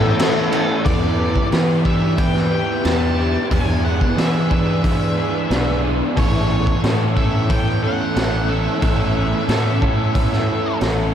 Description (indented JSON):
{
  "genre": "rock, shoegaze and dream pop",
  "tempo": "90 BPM",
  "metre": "4/4",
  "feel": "straight",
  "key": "E dorian",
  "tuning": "A4 = 440 Hz",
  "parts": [
    { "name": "octave-fuzz lead guitar", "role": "melody", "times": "0.0-10.8 s", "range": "C#5 to A5", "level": "-27 LUFS", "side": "left 1 dB", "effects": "distortion, ping-pong delay" },
    { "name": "hollow soft pad", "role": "sustained chords", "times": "0.0-0.8 s", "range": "A4 to B5", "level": "-35 LUFS", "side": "right 1 dB", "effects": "none" },
    { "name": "electric guitar through a small old amp", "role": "arpeggios", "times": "0.0-11.1 s", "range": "E3 to A4", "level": "-27 LUFS", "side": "equal", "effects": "lush chorus, ping-pong delay" },
    { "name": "crunchy overdriven guitar", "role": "riff", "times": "0.0-0.9 s", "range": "A2 to A3", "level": "-30 LUFS", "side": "left 2 dB", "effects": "lush chorus" },
    { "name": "overdriven semi-hollow guitar", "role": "riff", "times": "0.0-11.1 s", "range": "A2 to B4", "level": "-23 LUFS", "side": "right 6 dB", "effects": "reverse reverb" },
    { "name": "raw garage guitar", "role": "riff", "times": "0.0-11.1 s", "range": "A2 to B4", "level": "-25 LUFS", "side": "left 6 dB", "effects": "overdrive, ensemble chorus" },
    { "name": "fuzz fingered electric bass", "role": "bass", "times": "0.0-11.1 s", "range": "A1 to E3", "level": "-21 LUFS", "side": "equal", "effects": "overdrive" },
    { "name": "raw garage drum kit", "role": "drums", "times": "0.2-11.0 s", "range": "crash cymbal, hi-hat, kick drum, snare drum", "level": "-21 LUFS", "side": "equal", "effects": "none" }
  ],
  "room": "wet huge ambient reverb, RT60 8.2 s",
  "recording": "dreamy mix soaked in reverb",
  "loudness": "-16 LUFS",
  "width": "side -9 dB against mid",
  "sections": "0.9-11.1 A section",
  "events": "none",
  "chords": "0.0 Aadd9; 0.9 Em7; 3.5 E7; 6.2 Aadd9",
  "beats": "0.19 | 0.86 1.52 2.18 2.85 | 3.51 4.17 4.84 5.50 | 6.16 6.83 7.49 8.16 | 8.82 9.48 10.15 10.81"
}